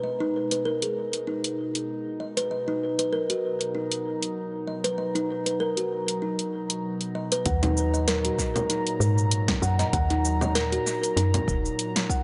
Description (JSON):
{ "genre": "organic downtempo", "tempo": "97 BPM", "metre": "4/4", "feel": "swing 55% on 16ths", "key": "Eb minor", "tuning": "A4 = 442 Hz", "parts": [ { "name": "warbly tape-like pad", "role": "sustained chords", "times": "0.0-12.2 s", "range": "Bb2 to Bb5", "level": "-36 LUFS", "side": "equal", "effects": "chorus, built-in reverb, phaser, sidechain pumping" }, { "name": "kalimba", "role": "arpeggios", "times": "0.0-12.2 s", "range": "Eb4 to Gb5", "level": "-30 LUFS", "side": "equal", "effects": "tape echo" }, { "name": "deep house drum kit", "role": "drums", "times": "0.5-12.2 s", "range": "cabasa, congas, hi-hat, snare drum", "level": "-30 LUFS", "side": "equal", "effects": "overdrive, analog delay" }, { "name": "woody FM bass", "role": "bass", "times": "7.5-11.7 s", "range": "Eb1 to Ab2", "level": "-27 LUFS", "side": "equal", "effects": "sidechain pumping" }, { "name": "electronic kick drum", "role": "drums", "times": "7.5-12.2 s", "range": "none", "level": "-31 LUFS", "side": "equal", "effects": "overdrive" } ], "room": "light reverb, digital ambience", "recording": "echo-heavy mix, nothing above 10.7 kHz", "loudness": "-26 LUFS", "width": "mono", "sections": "0.0-7.5 A section; 7.5-12.2 B section", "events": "none", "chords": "0.0 Abmadd9; 2.5 Bmaj7; 7.5 Ebm", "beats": "| 0.03 0.65 1.27 1.89 | 2.51 3.13 3.75 4.36 | 4.98 5.60 6.22 6.84 | 7.46 8.08 8.69 9.31 | 9.93 10.55 11.17 11.79" }